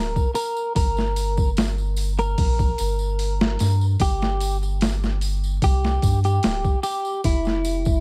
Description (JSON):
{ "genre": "trip hop", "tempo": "74 BPM", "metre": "4/4", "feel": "straight", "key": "G dorian", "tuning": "A4 = 440 Hz", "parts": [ { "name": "clean electric guitar", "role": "melody", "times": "0.0-8.0 s", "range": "E4 to Bb4", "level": "-28 LUFS", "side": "equal", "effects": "tape echo" }, { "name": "soft dub sub bass", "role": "bass", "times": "0.0-8.0 s", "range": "D1 to G2", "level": "-25 LUFS", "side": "equal", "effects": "none" }, { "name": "boom bap sampler-style drum kit", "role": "drums", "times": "0.2-8.0 s", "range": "hi-hat, kick drum, snare drum", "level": "-25 LUFS", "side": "equal", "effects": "overdrive, small room ambience" }, { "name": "tambourine", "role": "percussion", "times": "0.2-8.0 s", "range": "none", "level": "-41 LUFS", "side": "equal", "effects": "none" } ], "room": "little or no reverb", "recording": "vinyl crackle", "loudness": "-22 LUFS", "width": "mono", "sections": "0.0-8.0 A section", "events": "none", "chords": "0.0 Gm; 4.0 N.C.; 7.2 Fmaj7(no3)" }